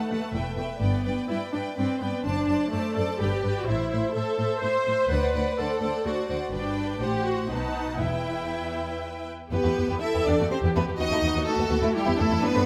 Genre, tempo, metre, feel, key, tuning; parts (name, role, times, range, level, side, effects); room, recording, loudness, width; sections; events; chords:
quick classical-period movement for string orchestra; 125 BPM; 3/4; rubato; E minor; A4 = 444 Hz
clear studio violin section; melody; 0.0-12.7 s; G4 to A5; -35 LUFS; equal
rich studio violin section; second line; 0.0-12.6 s; A3 to F#5; -34 LUFS; equal
rich studio viola section; accompaniment; 0.0-12.7 s; A3 to C5; -31 LUFS; equal
clear studio cello section; bass; 0.1-12.7 s; D2 to E4; -33 LUFS; equal
rich studio double bass section; bass; 0.3-12.6 s; E1 to G2; -32 LUFS; equal
moderate scoring stage reverb, RT60 1.6 s; -26 LUFS; mono
0.0-9.5 A section; 9.5-12.7 A section
0.3 Em; 0.8 G; 2.2 D7/F#; 3.2 G; 3.7 Am; 5.1 D7; 6.5 G; 7.0 F#dim/A; 7.5 B7; 8.0 Em; 11.0 B7/D# (rootless); 11.9 Em